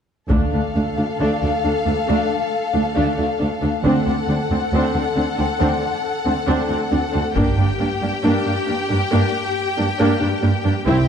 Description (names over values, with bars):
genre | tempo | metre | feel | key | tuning
cinematic, epic orchestral film score | 68 BPM | 4/4 | straight | D minor | A4 = 440 Hz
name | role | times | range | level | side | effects
rich symphonic violin section | second line | 0.3-11.1 s | G4 to G5 | -23 LUFS | left 4 dB | none
warm symphonic viola section | accompaniment | 0.3-11.1 s | A3 to E4 | -21 LUFS | equal | none
rich symphonic double bass section | bass | 0.3-11.1 s | G1 to D2 | -23 LUFS | right 2 dB | none
warm symphonic cello section | bass | 0.3-10.9 s | C2 to G2 | -22 LUFS | right 2 dB | none
taiko ensemble | drums | 0.3-2.0, 7.4-9.1 s | none | -24 LUFS | left 1 dB | none
room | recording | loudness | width
moderate scoring stage reverb, RT60 1.7 s | dark, warm production | -17 LUFS | side -7 dB against mid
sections
0.3-11.1 A section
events
build-up 0.3-11.1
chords
0.3 Dm; 3.8 D7; 7.4 Gm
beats
| 0.30 1.19 2.07 2.96 | 3.84 4.72 5.60 6.48 | 7.36 8.24 9.12 9.99 | 10.87